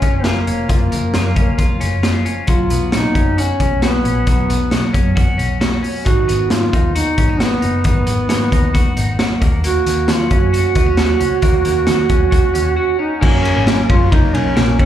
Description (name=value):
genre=jangly indie pop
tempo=134 BPM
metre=4/4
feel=straight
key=F# major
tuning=A4 = 439 Hz
part: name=mellow duduk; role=melody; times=0.0-14.9 s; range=A#3 to F#4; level=-18 LUFS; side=right 2 dB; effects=slapback echo, digital delay
part: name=twelve-string electric guitar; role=arpeggios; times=0.0-14.9 s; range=D#3 to F#4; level=-23 LUFS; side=left 4 dB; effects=slapback echo, digital delay
part: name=vintage muted picked electric bass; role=bass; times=0.0-14.9 s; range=E#1 to D#3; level=-19 LUFS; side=equal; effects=none
part: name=raw garage drum kit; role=drums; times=0.0-14.9 s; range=crash cymbal, hi-hat, kick drum, ride cymbal, snare drum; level=-16 LUFS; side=equal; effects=none
part: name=fingerpicked steel-string acoustic guitar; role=accompaniment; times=13.2-14.9 s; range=F#2 to C#4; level=-25 LUFS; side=right 7 dB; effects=slapback echo
part: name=warbly lo-fi synth keys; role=accompaniment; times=13.2-14.9 s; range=C#4 to A#4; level=-29 LUFS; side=right 2 dB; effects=none
room=light reverb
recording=live gig heard through the venue's PA, club reverb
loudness=-13 LUFS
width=side -11 dB against mid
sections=0.0-13.2 A section; 13.2-14.9 B section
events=break 12.8-13.2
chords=0.0 F#maj7; 2.5 Bsus2; 6.1 G#m7; 9.4 D#m7; 13.2 F#